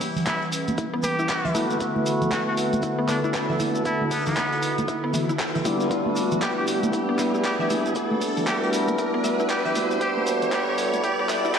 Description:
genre	deep house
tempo	117 BPM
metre	4/4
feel	swing 61% on 16ths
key	unclear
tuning	A4 = 436 Hz
part	airy breathy pad	sustained chords	0.0-11.6 s	D3 to F#5	-29 LUFS	equal	chorus, sidechain pumping
part	deep house drum kit	drums	0.0-11.6 s	handclaps, hi-hat	-32 LUFS	equal	high-pass filter on hats, vintage 12-bit sampler grit, high-pass filter on snare, high-pass filter on room
part	electronic kick drum	drums	0.0-11.6 s	none	-36 LUFS	equal	none
part	oversized low-tuned drum kit	drums	0.0-11.6 s	hi-hat, shaker, snare drum	-42 LUFS	left 1 dB	none
part	shekere	percussion	0.0-11.6 s	none	-38 LUFS	right 2 dB	none
part	riser	sound effects	0.4-11.6 s	none	-32 LUFS	equal	none
part	congas	percussion	0.2-11.4 s	none	-32 LUFS	right 2 dB	sidechain pumping on perc
part	trumpet with straight mute	melody	0.3-11.6 s	B3 to G4	-29 LUFS	equal	analog delay
part	mallet-like synth pluck	arpeggios	0.8-11.6 s	E3 to E5	-31 LUFS	left 1 dB	chorus, sidechain pumping, analog delay
part	percussive tonewheel organ	stabs	1.5-11.6 s	G3 to A4	-26 LUFS	equal	slow rotary speaker, sidechain pumping, low-pass filter, analog delay
room	wet lush hall reverb, RT60 2.0 s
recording	dreamy mix soaked in reverb, cassette tape, high-pass filter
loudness	-21 LUFS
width	side -7 dB against mid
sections	0.0-11.6 A section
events	build-up 0.0-11.6; filter sweep on analog synth pad 0.0-11.6; riser 0.4-11.6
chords	0.0 Em69; 1.5 D69; 5.7 Gmaj7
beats	0.27 0.78 1.29 | 1.80 2.32 2.83 3.34 | 3.86 4.37 4.88 5.39 | 5.91 6.42 6.93 7.45 | 7.96 8.47 8.98 9.50 | 10.01 10.52 11.04 11.55

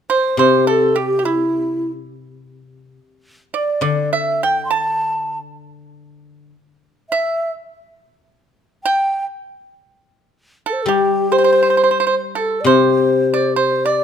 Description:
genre	chinese traditional, Chinese chamber ensemble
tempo	69 BPM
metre	2/4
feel	rubato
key	C gong mode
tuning	A4 = 440 Hz
part	hollow low xiao	melody	0.1-14.0 s	E4 to C6	-18 LUFS	equal	none
part	pipa	second line	0.1-14.0 s	E4 to A5	-20 LUFS	right 7 dB	none
part	guzheng	accompaniment	0.4-6.5, 10.9-14.0 s	C3 to G3	-19 LUFS	left 6 dB	none
room	light reverb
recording	close, detailed microphones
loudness	-15 LUFS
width	side -8 dB against mid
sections	0.0-12.7 A section; 12.7-14.0 B section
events	none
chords	none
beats	| 0.39 1.26 | 2.12 2.97 | 3.83 4.71 | 5.61 6.52 | 7.41 8.28 | 9.14 10.01 | 10.88 11.76 | 12.66 13.56

